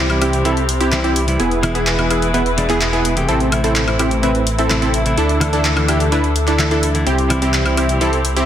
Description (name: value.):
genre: EDM, festival progressive house.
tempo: 127 BPM.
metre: 4/4.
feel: straight.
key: A minor.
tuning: A4 = 440 Hz.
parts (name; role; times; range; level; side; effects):
direct-recorded clean electric guitar; accompaniment; 0.0-8.1 s; B2 to G#4; -21 LUFS; left 1 dB; dub echo.
dark studio string section; sustained chords; 0.0-8.5 s; C3 to B4; -24 LUFS; left 1 dB; none.
supersaw stab; riff; 0.0-8.5 s; B3 to B4; -18 LUFS; right 1 dB; cassette tape, dub echo.
wide detuned saw bass; bass; 0.0-8.5 s; E1 to D2; -20 LUFS; equal; chorus.
big-room dance drum kit; drums; 0.1-8.5 s; handclaps, hi-hat, woodblock; -22 LUFS; left 1 dB; none.
room: light reverb.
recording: dense, heavily limited modern master.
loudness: -14 LUFS.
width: side -10 dB against mid.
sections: 0.0-8.5 A section.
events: filter sweep on supersaw synth 0.0-8.5.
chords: 0.0 C; 1.4 E; 3.3 Am; 5.2 Dsus2; 7.1 C.